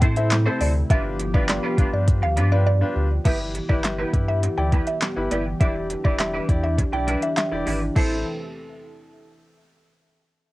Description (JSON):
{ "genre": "dance-pop", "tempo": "102 BPM", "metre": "4/4", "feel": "straight", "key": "A minor", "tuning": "A4 = 435 Hz", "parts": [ { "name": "chorused pulse-width pad", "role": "sustained chords", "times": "0.0-8.2 s", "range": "C3 to A4", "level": "-30 LUFS", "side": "equal", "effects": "sidechain pumping" }, { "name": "twelve-string electric guitar", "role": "riff", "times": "0.0-8.1 s", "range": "G3 to C5", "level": "-29 LUFS", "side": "right 2 dB", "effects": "ensemble chorus" }, { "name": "sub bass with octave", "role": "bass", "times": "0.0-8.2 s", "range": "E1 to A2", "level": "-24 LUFS", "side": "equal", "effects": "sidechain pumping" }, { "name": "smooth R&B drum kit", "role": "drums", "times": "0.0-8.1 s", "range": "crash cymbal, handclaps, hi-hat, kick drum, snare drum", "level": "-21 LUFS", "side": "equal", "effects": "none" }, { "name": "mallet-like synth pluck", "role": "melody", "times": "0.2-8.2 s", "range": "D5 to G5", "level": "-28 LUFS", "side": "right 1 dB", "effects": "chorus, phaser, cassette tape, tape echo" }, { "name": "clear concert grand piano", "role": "accompaniment", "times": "0.2-8.2 s", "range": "C4 to D5", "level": "-30 LUFS", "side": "left 2 dB", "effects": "sidechain pumping" } ], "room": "light reverb", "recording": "home recording on cassette", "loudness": "-19 LUFS", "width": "side -18 dB against mid", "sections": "0.0-3.3 A section; 3.3-8.0 B section; 8.0-10.3 C section", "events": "drop 0.0-3.3; break 2.7-3.3", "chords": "0.0 Am; 0.9 G7; 3.3 G6; 5.6 Em7; 8.0 Am", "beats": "0.31 | 0.90 1.49 2.08 2.67 | 3.25 3.84 4.43 5.02 | 5.61 6.20 6.78 7.37 | 7.96" }